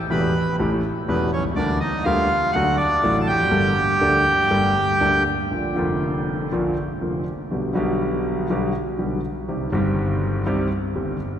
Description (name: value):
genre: tango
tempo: 122 BPM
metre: 4/4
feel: rubato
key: Bb major from 5.5 s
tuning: A4 = 440 Hz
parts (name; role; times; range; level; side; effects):
- bandoneon; melody; 0.1-5.2 s; B3 to B5; -21 LUFS; right 1 dB; none
- warm concert grand piano; accompaniment; 0.1-11.2 s; E1 to A4; -21 LUFS; equal; none
room: wet cathedral reverb, RT60 6.8 s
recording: recorded in a church or concert hall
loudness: -19 LUFS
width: side -9 dB against mid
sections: 0.0-5.5 A section; 5.5-11.4 B section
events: none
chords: 0.0 A7; 1.6 Gm/D; 2.5 D; 3.5 Gmadd9; 5.5 Bb; 7.5 G/B; 9.5 Cm